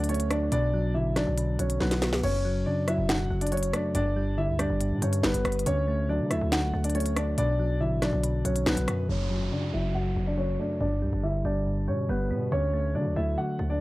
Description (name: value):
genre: hip hop, drill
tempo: 140 BPM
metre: 4/4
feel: half-time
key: F# phrygian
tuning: A4 = 439 Hz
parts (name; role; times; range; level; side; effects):
- dark concert grand piano; melody; 0.0-13.8 s; B3 to F#5; -30 LUFS; equal; low-pass filter
- soft electric-piano-like synth keys; accompaniment; 0.0-13.8 s; F#2 to D4; -29 LUFS; equal; chorus, low-pass filter
- distorted 808-style bass; bass; 0.0-13.8 s; E1 to D3; -30 LUFS; equal; distortion
- drill drum kit; drums; 0.0-9.0 s; crash cymbal, finger snaps, hi-hat, rim click, snare drum; -30 LUFS; equal; none
- downlifter; sound effects; 9.1-12.5 s; none; -42 LUFS; right 1 dB; none
room: digital ambience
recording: dry, gritty hardware recording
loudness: -24 LUFS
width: side -18 dB against mid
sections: 0.0-9.1 A section; 9.1-13.8 B section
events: drum fill 1.8-2.2; filter sweep 9.1-13.8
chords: 0.0 D; 0.5 Bm; 2.2 F#m; 3.9 G; 5.7 D; 7.4 Bm; 9.1 F#m; 10.8 G; 12.5 D